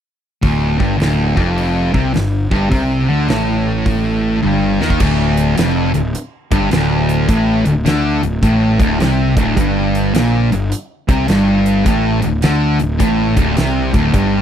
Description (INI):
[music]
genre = blues rock power trio and southern rock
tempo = 105 BPM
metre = 4/4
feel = swing 65% on 8ths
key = unclear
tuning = A4 = 441 Hz
[part]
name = thick fuzz guitar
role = riff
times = 0.4-14.4 s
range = D2 to Eb3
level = -15 LUFS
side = equal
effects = distortion
[part]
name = fuzz picked electric bass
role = bass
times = 0.4-14.4 s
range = D1 to Eb2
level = -19 LUFS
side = equal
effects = overdrive
[part]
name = huge arena drum kit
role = drums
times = 0.4-14.3 s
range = crash cymbal, hi-hat, kick drum, snare drum, toms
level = -19 LUFS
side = equal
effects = none
[sound]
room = light reverb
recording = dry, close 1970s-style studio recording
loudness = -13 LUFS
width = side -9 dB against mid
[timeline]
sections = 0.4-5.0 A section; 5.0-14.4 B section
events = drum fill 4.4-5.0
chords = 0.4 Dmadd11; 1.6 Fsus2; 2.7 Cm69; 5.0 D5; 9.6 Gmadd11; 11.9 D5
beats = | 0.42 1.00 1.57 2.15 | 2.72 3.29 3.86 4.44 | 5.01 5.58 6.15 6.72 | 7.29 7.86 8.43 9.00 | 9.57 10.14 10.72 11.29 | 11.86 12.43 13.00 13.57 | 14.14